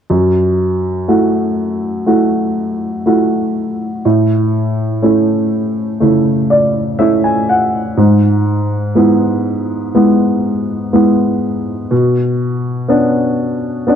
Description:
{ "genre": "pop", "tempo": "61 BPM", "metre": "4/4", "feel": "straight", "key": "unclear", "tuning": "A4 = 440 Hz", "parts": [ { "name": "warm baby grand piano", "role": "accompaniment", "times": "0.1-14.0 s", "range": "F#2 to G#5", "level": "-12 LUFS", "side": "equal", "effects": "none" } ], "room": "moderate plate reverb, RT60 3.0 s", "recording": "dark, warm production", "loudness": "-12 LUFS", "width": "side -8 dB against mid", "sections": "0.1-14.0 A section", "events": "grand piano fill 6.0-8.0", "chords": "0.1 F#m7; 4.0 A; 8.0 E/G#; 11.9 Bmadd9" }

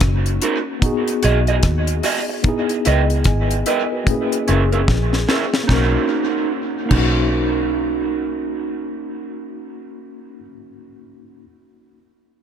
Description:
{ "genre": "lovers rock reggae", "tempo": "74 BPM", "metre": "4/4", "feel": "swing 61% on 16ths", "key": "B major", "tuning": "A4 = 438 Hz", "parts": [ { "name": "mellow tine electric piano", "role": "accompaniment", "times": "0.0-11.5 s", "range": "A3 to G#5", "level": "-24 LUFS", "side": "left 3 dB", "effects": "medium stereo tremolo, tape echo" }, { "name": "vintage muted fingered electric bass", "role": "bass", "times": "0.0-10.4 s", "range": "F#1 to D#2", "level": "-19 LUFS", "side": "equal", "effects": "none" }, { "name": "deep reggae drum kit", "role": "drums", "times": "0.0-7.2 s", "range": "crash cymbal, hi-hat, kick drum, rim click, snare drum", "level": "-21 LUFS", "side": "left 1 dB", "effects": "tape echo" }, { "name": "electric guitar through a small old amp", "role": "stabs", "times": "0.4-10.5 s", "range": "C#4 to D#5", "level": "-22 LUFS", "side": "right 5 dB", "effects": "lush chorus, tape echo" } ], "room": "light reverb, small room ambience", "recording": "none", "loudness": "-16 LUFS", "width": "side -8 dB against mid", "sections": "0.0-5.7 A section; 5.7-8.9 B section", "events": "drum fill 4.9-5.7", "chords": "0.0 Bmaj7 (rootless); 0.8 B6; 2.4 C#m9; 4.1 F#7; 5.7 Bmaj7" }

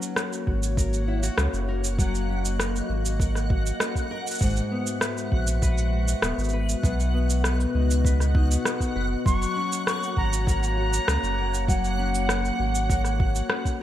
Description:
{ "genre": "folktronica", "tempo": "99 BPM", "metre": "4/4", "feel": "straight", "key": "F# mixolydian", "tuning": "A4 = 440 Hz", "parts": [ { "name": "warbly tape-like pad", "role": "sustained chords", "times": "0.0-13.8 s", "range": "G#3 to E5", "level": "-32 LUFS", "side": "left 2 dB", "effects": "chorus, built-in reverb" }, { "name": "nylon-string guitar", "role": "arpeggios", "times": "0.0-13.8 s", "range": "G#2 to B4", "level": "-32 LUFS", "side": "left 3 dB", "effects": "diffuse ambient delay" }, { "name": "electronic shaker and rim click", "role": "drums", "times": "0.0-13.8 s", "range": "none", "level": "-29 LUFS", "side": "equal", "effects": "none" }, { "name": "backwards swelling texture", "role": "texture", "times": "0.2-13.8 s", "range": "F#5 to F#6", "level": "-36 LUFS", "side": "equal", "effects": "built-in reverb, ensemble chorus" }, { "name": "warm sub bass", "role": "bass", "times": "0.5-13.4 s", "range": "D#1 to C#2", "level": "-25 LUFS", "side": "equal", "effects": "none" }, { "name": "electronic kick drum", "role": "drums", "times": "0.5-13.8 s", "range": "none", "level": "-24 LUFS", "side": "equal", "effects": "none" }, { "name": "silver concert flute", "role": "melody", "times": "9.3-13.8 s", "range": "F#5 to C#6", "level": "-29 LUFS", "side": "right 1 dB", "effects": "diffuse ambient delay" } ], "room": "moderate plate reverb, RT60 1.8 s, digital ambience", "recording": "dreamy mix soaked in reverb", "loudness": "-22 LUFS", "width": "side -12 dB against mid", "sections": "0.0-13.8 A section", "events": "none", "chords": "0.0 F#; 4.4 Eadd9/G#; 6.8 B; 9.3 F#" }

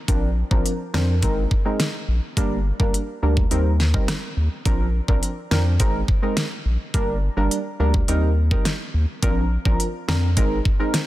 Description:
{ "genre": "dancehall", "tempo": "105 BPM", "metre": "4/4", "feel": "straight", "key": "unclear", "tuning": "A4 = 440 Hz", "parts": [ { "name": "deep mellow chord stab", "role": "accompaniment", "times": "0.1-11.0 s", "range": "F3 to Bb4", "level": "-25 LUFS", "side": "right 1 dB", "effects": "chorus" }, { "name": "round analog bass", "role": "bass", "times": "0.1-10.6 s", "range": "G1 to F2", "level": "-21 LUFS", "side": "equal", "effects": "none" }, { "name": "pop drum kit", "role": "drums", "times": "0.1-11.1 s", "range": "hi-hat, kick drum, rim click, snare drum", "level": "-22 LUFS", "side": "equal", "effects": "none" } ], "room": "digital ambience", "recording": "dense, heavily limited modern master", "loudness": "-19 LUFS", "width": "side -16 dB against mid", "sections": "0.0-11.1 A section", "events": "none", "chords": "0.1 Bbadd9; 1.2 Abadd9; 2.4 Gm; 3.5 Eb6; 4.7 Bbadd9; 5.8 Abadd9; 6.9 Gm; 8.1 Eb6; 9.2 Bbadd9; 10.4 Abadd9" }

